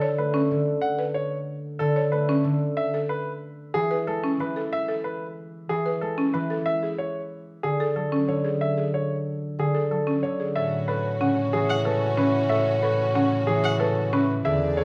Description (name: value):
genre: classical, minimalist pattern music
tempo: 185 BPM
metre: 6/4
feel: straight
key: unclear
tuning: A4 = 440 Hz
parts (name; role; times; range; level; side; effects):
- clear concert grand piano; melody; 0.0-14.8 s; G#4 to F#5; -31 LUFS; equal; none
- concert harp; accompaniment; 0.0-14.8 s; C#3 to A3; -30 LUFS; equal; none
- buzzing marimba with medium hard mallets; arpeggios; 0.0-14.8 s; C#4 to C#5; -30 LUFS; equal; none
- clear French horn; second line; 10.6-14.8 s; G#4 to C#5; -29 LUFS; equal; none
- clear symphonic violin section; sustained chords; 10.6-14.8 s; C#4 to D5; -37 LUFS; equal; none
- rich double bass; bass; 10.6-14.8 s; E2 to A2; -32 LUFS; equal; none
- warm violin; arpeggios; 11.7-13.8 s; F#5; -33 LUFS; equal; none
room: moderate large studio reverb, RT60 1.3 s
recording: none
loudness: -25 LUFS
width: mono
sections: 0.0-10.6 A section; 10.6-14.8 B section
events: none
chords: 0.0 Bm7 (rootless); 2.8 Eadd11; 6.7 Dmaj7; 10.6 A69